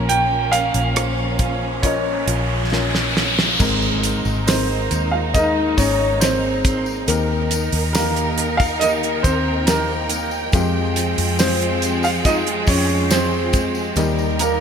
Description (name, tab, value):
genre	pop ballad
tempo	69 BPM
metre	4/4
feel	straight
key	Ab major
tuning	A4 = 443 Hz
part	warm grand piano	melody	0.0-14.6 s	Bb3 to G5	-21 LUFS	equal	lush chorus, digital delay
part	dark upright piano	accompaniment	0.0-14.6 s	Ab2 to Eb5	-26 LUFS	left 6 dB	none
part	warm studio string section	sustained chords	0.0-14.6 s	Eb3 to G5	-26 LUFS	right 2 dB	none
part	picked steel-string acoustic guitar	arpeggios	0.0-14.6 s	Bb2 to Bb4	-29 LUFS	right 7 dB	wide subtle chorus, digital delay
part	vintage muted fingered electric bass	bass	0.0-14.6 s	Ab1 to F2	-24 LUFS	equal	none
part	damped 70s drum kit	drums	0.1-14.6 s	crash cymbal, hi-hat, kick drum, rim click, snare drum	-21 LUFS	right 1 dB	gated reverb
part	riser and impact	sound effects	1.4-7.1 s	none	-24 LUFS	equal	none
part	tambourine	percussion	3.6-14.6 s	none	-32 LUFS	left 7 dB	none
room	moderate lush hall reverb, RT60 2.9 s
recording	bright 1980s-style digital production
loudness	-16 LUFS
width	side -7 dB against mid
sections	0.0-3.6 A section; 3.6-14.6 B section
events	riser 1.4-3.6; drum fill 2.7-3.6; impact 3.6-7.1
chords	0.0 Bbm; 3.6 Abadd9; 7.1 Eb; 10.5 Fmadd9; 14.0 Eb